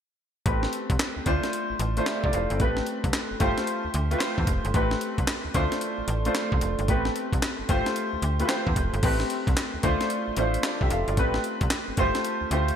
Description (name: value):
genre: R&B, new jack swing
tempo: 112 BPM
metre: 4/4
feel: swing 64% on 16ths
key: A minor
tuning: A4 = 439 Hz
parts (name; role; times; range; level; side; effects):
- clear baby grand piano; accompaniment; 0.5-12.8 s; A3 to F5; -26 LUFS; equal; lush chorus
- slap-like FM bass; bass; 0.5-12.7 s; F1 to E2; -28 LUFS; equal; none
- breakbeat sampler-style drum kit; drums; 0.5-12.8 s; crash cymbal, handclaps, hi-hat, kick drum, snare drum; -28 LUFS; equal; gated reverb
room: light reverb, digital ambience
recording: bright 1980s-style digital production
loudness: -23 LUFS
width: side -8 dB against mid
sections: 0.5-9.0 A section; 9.0-12.8 B section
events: none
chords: 0.5 Am9; 1.3 Dm7; 2.6 Am9; 3.4 G9sus4; 4.7 Am9; 5.5 Dm7; 6.9 Am9; 7.7 G9sus4; 9.0 Am9; 9.8 Dm7; 11.2 Am9; 12.0 G9sus4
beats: | 0.46 0.99 1.53 2.06 | 2.60 3.14 3.67 4.21 | 4.74 5.28 5.82 6.35 | 6.89 7.42 7.96 8.49 | 9.03 9.56 10.10 10.64 | 11.17 11.71 12.24